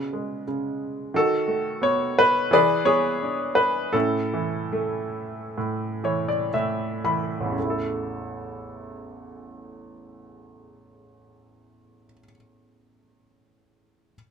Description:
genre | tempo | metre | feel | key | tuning
classical, lyrical solo piano | 58-89 BPM | 4/4 | rubato | A major | A4 = 440 Hz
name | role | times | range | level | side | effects
bright baby grand piano | solo | 0.0-14.2 s | A1 to B5 | -22 LUFS | equal | none
room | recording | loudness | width
light reverb | minimal, uncompressed stereo recording | -22 LUFS | side -6 dB against mid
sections
0.0-7.6 A section; 7.6-11.6 B section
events
slowing down 1.1-7.6; grand piano fill 5.6-7.6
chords
0.0 C#5; 1.1 B7/D#; 2.5 E7; 4.0 A

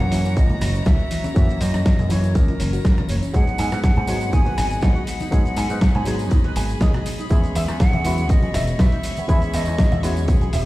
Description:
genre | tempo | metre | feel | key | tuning
nu-disco, nu disco | 121 BPM | 4/4 | swing 53% on 16ths | unclear | A4 = 440 Hz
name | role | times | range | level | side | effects
breathy hollow concert flute | melody | 0.0-10.7 s | G#4 to G#5 | -29 LUFS | right 1 dB | digital delay
barky reed electric piano | accompaniment | 0.0-10.7 s | E3 to G#4 | -27 LUFS | left 1 dB | overdrive
clear studio string section | sustained chords | 0.0-10.7 s | E4 to C#6 | -36 LUFS | left 1 dB | sidechain pumping
soft round pluck | arpeggios | 0.0-3.3 s | E3 to F#4 | -31 LUFS | left 1 dB | none
picked electric bass | bass | 0.0-10.7 s | E1 to G#2 | -23 LUFS | equal | tube saturation
dusty soul sampler-style drum kit | drums | 0.0-10.6 s | hi-hat, rim click, shaker, snare drum | -27 LUFS | equal | overdrive
congas and tambourine | percussion | 0.0-10.6 s | none | -32 LUFS | equal | none
electronic kick drum | drums | 0.4-10.4 s | none | -18 LUFS | equal | none
electric guitar with an envelope filter | riff | 3.3-10.6 s | B3 to G#5 | -30 LUFS | right 1 dB | lush chorus, ping-pong delay
room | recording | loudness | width
little or no reverb | played on a big sound system in a bare room, large studio reverb, faint mains hum | -17 LUFS | side -17 dB against mid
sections
0.0-10.7 A section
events
none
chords
0.0 F#7; 3.3 G#m7; 7.3 E6

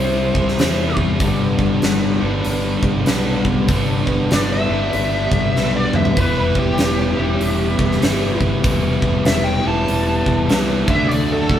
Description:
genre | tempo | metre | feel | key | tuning
blues rock power trio and southern rock | 97 BPM | 4/4 | swing 62% on 8ths | E minor | A4 = 442 Hz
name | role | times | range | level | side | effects
dark smooth lead guitar | melody | 0.0-11.6 s | G4 to A5 | -22 LUFS | left 1 dB | wah, overdrive
overdriven electric guitar | riff | 0.0-11.6 s | G2 to E4 | -19 LUFS | left 1 dB | none
overdriven fingered electric bass | bass | 0.0-11.6 s | E1 to E2 | -23 LUFS | equal | none
huge arena drum kit | drums | 0.3-11.6 s | hi-hat, kick drum, snare drum, toms | -20 LUFS | equal | none
room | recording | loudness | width
moderate studio reverb, RT60 0.7 s | band playing live in one room | -15 LUFS | side -10 dB against mid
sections
0.0-11.6 A section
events
drum fill 5.5-6.2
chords
0.0 C; 1.2 G; 6.2 Em; 10.8 D

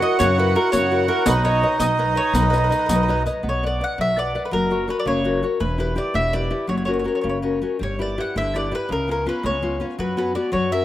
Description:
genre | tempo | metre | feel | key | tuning
italian folk, Italian serenade | 111 BPM (dotted quarters) | 6/8 | rubato | B major, B harmonic minor from 3.4 s | A4 = 440 Hz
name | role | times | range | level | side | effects
mandolin | melody | 0.0-10.8 s | A#4 to F#5 | -24 LUFS | left 1 dB | none
accordion | second line | 0.0-3.2 s | D#4 to F#4 | -21 LUFS | right 3 dB | none
nylon-string guitar | accompaniment | 0.0-10.8 s | B2 to F#5 | -24 LUFS | left 3 dB | none
upright bass | bass | 0.2-10.8 s | E1 to F#2 | -25 LUFS | equal | none
riq | percussion | 0.2-3.4 s | none | -26 LUFS | left 3 dB | none
room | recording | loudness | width
light reverb, small room ambience | rough home demo mix | -19 LUFS | side -13 dB against mid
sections
0.0-3.4 A section; 3.4-10.8 B section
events
none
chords
0.0 F#7; 1.3 Badd9; 3.4 Bm; 4.5 F#; 5.6 Em; 6.7 F#; 7.8 G6; 8.9 C#7; 10.0 F#sus4

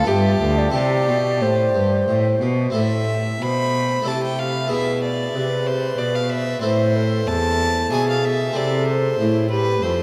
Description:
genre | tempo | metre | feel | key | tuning
classical, baroque-style sonata movement with continuo | 92 BPM | 3/4 | uneven beats | A minor | A4 = 440 Hz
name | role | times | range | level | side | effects
baroque flute | melody | 0.0-10.0 s | E4 to E5 | -25 LUFS | equal | none
rich violin | second line | 0.0-10.0 s | G4 to B5 | -27 LUFS | equal | none
harpsichord | accompaniment | 0.0-10.0 s | D2 to A4 | -28 LUFS | equal | none
rich cello | bass | 0.0-10.0 s | D2 to C3 | -25 LUFS | equal | none
room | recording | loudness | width
wet cathedral reverb, RT60 6.0 s | in a vast, echoing space | -20 LUFS | mono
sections
0.0-2.8 A section; 2.8-10.0 A section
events
none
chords
0.1 G7; 0.7 C; 2.8 Am; 4.1 Am/C; 4.7 E7/B; 6.6 Am; 7.9 E7/B; 8.6 Am

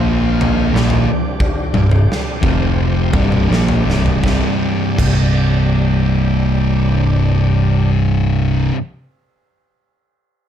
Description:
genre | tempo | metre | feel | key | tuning
stoner and doom metal | 80-93 BPM | 4/4 | straight | unclear | A4 = 440 Hz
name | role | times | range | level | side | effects
bright tonewheel organ | sustained chords | 0.0-7.9 s | C3 to C5 | -27 LUFS | right 1 dB | overdrive, chorus vibrato, slow rotary speaker
thick fuzz guitar | riff | 0.0-8.7 s | C2 to Bb3 | -17 LUFS | left 6 dB | distortion
thick fuzz guitar | riff | 0.0-8.7 s | C2 to Bb3 | -18 LUFS | right 7 dB | distortion
growling picked electric bass | bass | 0.0-8.7 s | C1 to Bb1 | -19 LUFS | equal | overdrive
big rock drum kit | drums | 0.4-5.2 s | crash cymbal, kick drum, snare drum, toms | -20 LUFS | equal | none
room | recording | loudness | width
light reverb | dark, warm production | -13 LUFS | side -10 dB against mid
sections
0.0-4.2 A section; 4.2-7.2 B section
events
slowing down 0.0-4.2; drum fill 3.9-4.2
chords
0.0 Bb5; 0.7 C5; 2.4 F5; 3.1 C5

